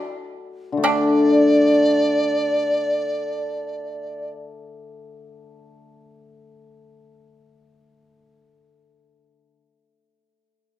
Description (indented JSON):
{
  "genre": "chinese traditional, Chinese chamber ensemble",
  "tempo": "free time",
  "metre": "none",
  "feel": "none",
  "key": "unclear",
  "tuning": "A4 = 440 Hz",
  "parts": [
    { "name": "hammered dulcimer", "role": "accompaniment", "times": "0.7-9.6 s", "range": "D3 to D4", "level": "-21 LUFS", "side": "left 2 dB", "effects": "none" },
    { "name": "bright reedy large dizi", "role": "melody", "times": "0.8-4.3 s", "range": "D5", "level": "-22 LUFS", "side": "right 2 dB", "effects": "none" },
    { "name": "pipa", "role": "second line", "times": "0.8-4.3 s", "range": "D4", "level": "-26 LUFS", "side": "right 4 dB", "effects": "none" },
    { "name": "woodblock", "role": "percussion", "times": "0.8-1.3 s", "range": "none", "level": "-29 LUFS", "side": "left 4 dB", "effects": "none" }
  ],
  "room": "wet recital hall reverb, RT60 1.5 s",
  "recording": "close, detailed microphones",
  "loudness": "-17 LUFS",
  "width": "side -13 dB against mid",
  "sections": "0.8-4.6 A section",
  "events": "none",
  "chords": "none",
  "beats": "free time"
}